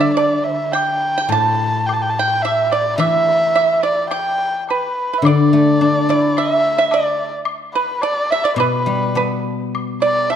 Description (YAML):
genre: chinese traditional, Chinese chamber ensemble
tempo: 107 BPM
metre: 2/4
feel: rubato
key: unclear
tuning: A4 = 440 Hz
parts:
  - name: dark erhu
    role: melody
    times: 0.0-10.4 s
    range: B4 to A5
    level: -18 LUFS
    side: equal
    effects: none
  - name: pipa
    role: second line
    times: 0.0-10.4 s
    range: B4 to A5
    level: -20 LUFS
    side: right 6 dB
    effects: none
  - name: guzheng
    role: accompaniment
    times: 0.0-10.3 s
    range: A2 to E4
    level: -18 LUFS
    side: left 3 dB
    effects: none
  - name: woodblock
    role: percussion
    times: 0.2-10.4 s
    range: none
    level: -29 LUFS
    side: left 5 dB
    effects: none
room: moderate scoring stage reverb, RT60 1.8 s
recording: dark, warm production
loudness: -15 LUFS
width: side -9 dB against mid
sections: 0.0-5.3 A section; 5.3-10.4 B section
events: none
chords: none